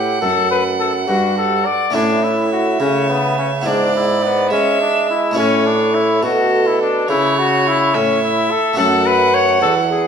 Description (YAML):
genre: classical, baroque-style sonata movement with continuo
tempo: 70 BPM (dotted quarters)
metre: 12/8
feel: rubato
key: unclear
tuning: A4 = 442 Hz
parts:
  - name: mellow trumpet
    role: melody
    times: 0.0-10.1 s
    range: B3 to D5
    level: -17 LUFS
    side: left 5 dB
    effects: none
  - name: rich violin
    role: second line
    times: 0.0-10.1 s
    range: A4 to F#5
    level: -20 LUFS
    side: right 6 dB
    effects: none
  - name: harpsichord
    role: accompaniment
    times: 0.0-10.1 s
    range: E2 to F#4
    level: -22 LUFS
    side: left 1 dB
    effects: none
  - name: mellow bassoon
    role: bass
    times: 0.0-10.1 s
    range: E2 to G#3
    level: -19 LUFS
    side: right 2 dB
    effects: none
room: wet recital hall reverb, RT60 1.6 s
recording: minimal, uncompressed stereo recording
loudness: -13 LUFS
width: side -7 dB against mid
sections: 0.0-10.1 A section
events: none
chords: 0.0 D; 1.9 A; 3.7 E7/G#; 5.4 A; 8.8 F#m